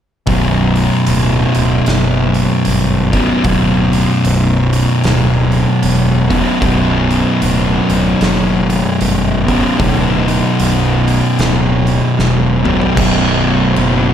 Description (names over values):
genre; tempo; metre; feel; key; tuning
stoner and doom metal; 76 BPM; 4/4; swing 61% on 8ths; B minor; A4 = 439 Hz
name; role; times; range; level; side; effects
fuzz guitar; riff; 0.3-14.1 s; B1 to B2; -12 LUFS; equal; distortion
fuzz fingered electric bass; bass; 0.3-14.1 s; B0 to G1; -18 LUFS; equal; overdrive
oversized low-tuned drum kit; drums; 0.3-14.0 s; crash cymbal, hi-hat, kick drum, snare drum, toms; -21 LUFS; equal; none
room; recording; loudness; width
light reverb, small room ambience; none; -11 LUFS; side -9 dB against mid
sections
0.3-13.0 A section; 13.0-14.1 B section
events
drum fill 12.2-13.0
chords
0.3 Bm; 13.0 B5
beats
| 0.27 1.07 1.86 2.65 | 3.45 4.24 5.03 5.83 | 6.62 7.42 8.21 9.01 | 9.80 10.60 11.39 12.18 | 12.98 13.77